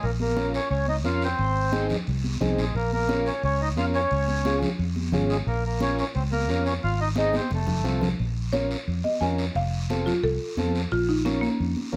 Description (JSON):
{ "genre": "latin, cumbia", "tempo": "176 BPM", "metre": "4/4", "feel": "straight", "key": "Bb minor, Bb harmonic minor from 8.2 s", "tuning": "A4 = 440 Hz", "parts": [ { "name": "mellow accordion", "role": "second line", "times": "0.0-8.0 s", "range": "Ab3 to F4", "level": "-29 LUFS", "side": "equal", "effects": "none" }, { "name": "fingered electric bass", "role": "bass", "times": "0.0-12.0 s", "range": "F1 to F2", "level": "-29 LUFS", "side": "equal", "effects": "none" }, { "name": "congas", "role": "percussion", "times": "0.0-12.0 s", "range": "none", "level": "-34 LUFS", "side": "equal", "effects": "none" }, { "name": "guiro", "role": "percussion", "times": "0.0-11.9 s", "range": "none", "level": "-41 LUFS", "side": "equal", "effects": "none" }, { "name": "combo organ", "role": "accompaniment", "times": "0.4-12.0 s", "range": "C4 to Bb4", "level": "-32 LUFS", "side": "equal", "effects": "none" }, { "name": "buzzing marimba with medium mallets", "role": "melody", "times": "8.5-12.0 s", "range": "Bb3 to Ab5", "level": "-29 LUFS", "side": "equal", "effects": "plate reverb" } ], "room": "moderate studio reverb, RT60 0.8 s", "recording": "none", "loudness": "-25 LUFS", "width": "mono", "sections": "0.0-8.2 A section; 8.2-12.0 B section", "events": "accordion solo 0.0-8.2; drum fill 7.3-8.2; marimba solo 8.2-12.0", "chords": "0.0 Bbm; 1.4 Ab; 2.8 Bbm; 4.1 Db; 5.5 Bbm; 6.8 Ab; 7.5 F; 8.2 Bbm; 9.6 F; 10.9 Bbm", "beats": "| 0.04 0.38 0.71 1.05 | 1.39 1.73 2.07 2.41 | 2.75 3.09 3.43 3.77 | 4.11 4.45 4.79 5.13 | 5.47 5.81 6.15 6.49 | 6.83 7.17 7.51 7.86 | 8.20 8.54 8.88 9.22 | 9.56 9.90 10.24 10.58 | 10.92 11.26 11.60 11.94" }